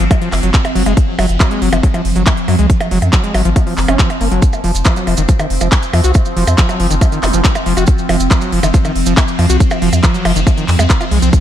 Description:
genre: psychedelic trance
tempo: 139 BPM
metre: 4/4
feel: straight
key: F phrygian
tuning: A4 = 438 Hz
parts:
  - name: evolving wavetable pad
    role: sustained chords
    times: 0.0-11.4 s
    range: F3 to C4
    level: -19 LUFS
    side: right 1 dB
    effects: phaser, built-in reverb, sidechain pumping
  - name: overdriven acid bass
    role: riff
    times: 0.0-11.3 s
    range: Eb3 to Gb4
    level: -19 LUFS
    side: moving between left 4 dB and right 3 dB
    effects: auto-pan, sidechain pumping, ping-pong delay
  - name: round analog bass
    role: bass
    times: 0.0-11.3 s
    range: F1 to Gb2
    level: -15 LUFS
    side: equal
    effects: none
  - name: techno drum kit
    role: drums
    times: 0.0-11.4 s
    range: handclaps, hi-hat, percussion blips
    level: -19 LUFS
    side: right 1 dB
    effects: none
  - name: electronic kick drum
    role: drums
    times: 0.1-11.4 s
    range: none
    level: -12 LUFS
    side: equal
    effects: none
  - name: maracas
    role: percussion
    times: 4.4-11.4 s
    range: none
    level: -26 LUFS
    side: right 6 dB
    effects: none
  - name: zap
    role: sound effects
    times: 7.2-7.3 s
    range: none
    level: -24 LUFS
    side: left 1 dB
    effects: none
room: digital ambience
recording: dark, warm production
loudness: -11 LUFS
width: side -11 dB against mid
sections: 0.0-11.4 A section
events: none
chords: 0.0 Gb5; 4.4 F5

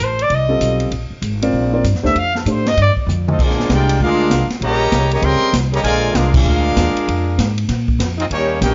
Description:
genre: jazz, big band swing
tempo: 195 BPM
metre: 4/4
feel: swing 63% on 8ths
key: Bb major from 3.4 s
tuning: A4 = 443 Hz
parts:
  - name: mellow trumpet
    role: melody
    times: 0.0-2.9 s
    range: A4 to F5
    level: -20 LUFS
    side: equal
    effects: none
  - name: upright bass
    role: bass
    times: 0.0-8.7 s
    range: Ab1 to Bb2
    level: -21 LUFS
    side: equal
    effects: none
  - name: swinging big-band drum kit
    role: drums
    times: 0.2-8.7 s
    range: crash cymbal, hi-hat, kick drum, ride cymbal, snare drum, toms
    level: -23 LUFS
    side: equal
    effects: none
  - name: warm grand piano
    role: accompaniment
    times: 0.5-2.6 s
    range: G3 to D5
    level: -22 LUFS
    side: equal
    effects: none
  - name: brilliant trumpet section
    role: melody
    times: 3.3-8.7 s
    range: Bb3 to C6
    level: -22 LUFS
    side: equal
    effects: none
  - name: mellow trombone section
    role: second line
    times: 3.3-8.7 s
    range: Db3 to G4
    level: -22 LUFS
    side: equal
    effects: none
room: light reverb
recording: nothing above 7.5 kHz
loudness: -16 LUFS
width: mono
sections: 0.0-3.4 A section; 3.4-8.7 B section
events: trumpet solo 0.0-3.4; drum fill 3.1-3.4; band accent 6.3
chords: 0.0 F7; 0.9 Bb7; 2.1 F7; 3.4 Bb7; 4.6 Eb7; 5.8 Bb7; 7.1 Fm; 7.7 Bb5

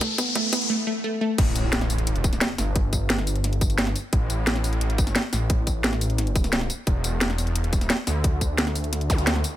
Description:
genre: dark technical drum and bass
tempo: 175 BPM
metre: 4/4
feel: straight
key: unclear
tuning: A4 = 441 Hz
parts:
  - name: dark analog pad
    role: sustained chords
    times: 0.0-0.7 s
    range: A3 to B4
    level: -47 LUFS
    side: equal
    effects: none
  - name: wide unison pluck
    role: arpeggios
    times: 0.0-1.3 s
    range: A3 to B3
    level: -26 LUFS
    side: equal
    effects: sidechain pumping, dub echo
  - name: drum and bass drum kit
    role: drums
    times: 0.0-9.5 s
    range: crash cymbal, hi-hat, snare drum, tambourine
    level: -26 LUFS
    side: equal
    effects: overdrive, high-pass filter on hats, studio reverb, high-pass filter on perc, high-pass filter on cymbals, high-pass filter on snare
  - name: electronic kick drum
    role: drums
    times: 0.0-9.2 s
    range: none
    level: -23 LUFS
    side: equal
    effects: overdrive, high-pass filter on kick, studio reverb
  - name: riser, impact and zap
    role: sound effects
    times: 0.0-2.8, 9.1-9.2 s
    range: none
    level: -29 LUFS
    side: left 1 dB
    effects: none
  - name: wide detuned saw bass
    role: bass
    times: 1.4-9.4 s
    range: E1 to D2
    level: -25 LUFS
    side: equal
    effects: chorus, overdrive, sidechain pumping
room: little or no reverb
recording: none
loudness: -21 LUFS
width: side -13 dB against mid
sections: 0.0-1.4 A section; 1.4-9.6 B section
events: build-up 0.0-1.4; drum fill 0.0-0.7; riser 0.0-0.7; filter sweep on synth arpeggio sound 0.0-1.4; drop 1.4-9.6; impact 1.4-2.8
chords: 0.0 A5; 1.4 Gsus2; 6.9 Dsus2/E

